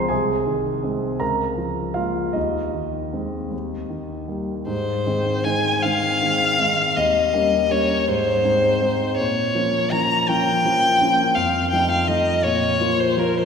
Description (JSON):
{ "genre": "classical, romantic duo for violin and grand piano", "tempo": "51-56 BPM (dotted quarters)", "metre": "6/8", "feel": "rubato", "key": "Ab major", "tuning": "A4 = 440 Hz", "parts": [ { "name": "warm concert grand piano", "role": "accompaniment", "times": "0.0-13.4 s", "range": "C2 to C6", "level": "-22 LUFS", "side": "left 1 dB", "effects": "none" }, { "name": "rich violin", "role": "melody", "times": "4.7-13.4 s", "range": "Bb4 to Bb5", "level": "-19 LUFS", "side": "left 1 dB", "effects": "none" } ], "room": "wet church reverb, RT60 2.6 s", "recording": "recorded in a church or concert hall", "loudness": "-18 LUFS", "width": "side -6 dB against mid", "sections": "0.0-4.7 A section; 4.7-13.4 B section", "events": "none", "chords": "0.1 Ab/C; 1.2 Bbm7/Db; 2.4 Ab/Eb; 3.5 Eb; 4.7 Ab; 7.0 Eb7; 8.1 Ab; 9.2 Bbm; 11.4 F7; 12.4 Bbm", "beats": "| 0.10 1.21 | 2.35 3.52 | 4.67 5.84 | 6.96 8.08 | 9.18 10.28 | 11.36 12.44" }